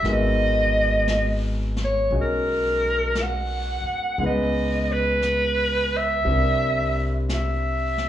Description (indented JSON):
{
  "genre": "jazz ballad",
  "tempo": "58 BPM",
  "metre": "4/4",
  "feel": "swing 66% on 8ths",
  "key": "unclear",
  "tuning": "A4 = 440 Hz",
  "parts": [
    { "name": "bright clarinet", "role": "melody", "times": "0.0-8.1 s", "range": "Bb4 to Gb5", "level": "-22 LUFS", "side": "right 1 dB", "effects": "slapback echo" },
    { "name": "warm concert grand piano", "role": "accompaniment", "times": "0.0-8.1 s", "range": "G3 to Eb5", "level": "-28 LUFS", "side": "left 2 dB", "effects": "none" },
    { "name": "upright bass", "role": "bass", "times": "0.0-8.1 s", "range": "Ab1 to Db2", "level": "-26 LUFS", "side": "equal", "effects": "none" },
    { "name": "jazz brush drum kit", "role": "drums", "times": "0.0-8.1 s", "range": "brushed snare drum, hi-hat, snare drum", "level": "-36 LUFS", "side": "left 1 dB", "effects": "slapback echo" }
  ],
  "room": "light reverb, small room ambience",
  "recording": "live gig heard through the venue's PA, club reverb, nothing above 10.6 kHz",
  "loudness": "-20 LUFS",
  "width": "side -11 dB against mid",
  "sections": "0.0-8.1 A section",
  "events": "none",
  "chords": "0.0 Abm9; 4.2 Dbm7; 6.3 C9",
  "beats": "| 0.05 1.08 2.12 3.15 | 4.19 5.22 6.25 7.29"
}